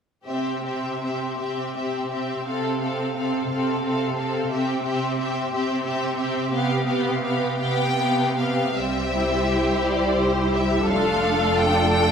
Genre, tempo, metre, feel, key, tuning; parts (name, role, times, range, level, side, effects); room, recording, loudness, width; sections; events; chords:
classical; 48-61 BPM (dotted quarters); 6/8; rubato; C major; A4 = 441 Hz
rich studio violin section; melody; 0.3-12.1 s; C5 to G5; -28 LUFS; left 2 dB
warm studio violin section; second line; 0.3-12.1 s; F4 to C5; -27 LUFS; left 2 dB
warm studio viola section; accompaniment; 0.3-12.1 s; G3 to E4; -25 LUFS; right 1 dB
rich studio cello section; bass; 0.3-12.1 s; C3 to A4; -28 LUFS; right 2 dB
warm studio double bass section; bass; 8.8-12.1 s; F1 to C2; -28 LUFS; right 1 dB
wet recital hall reverb, RT60 1.5 s; recorded in a church or concert hall; -21 LUFS; side -7 dB against mid
0.3-8.8 A section; 8.8-12.1 B section
0.3 C; 6.5 G7/C; 8.8 C; 10.9 Dm/F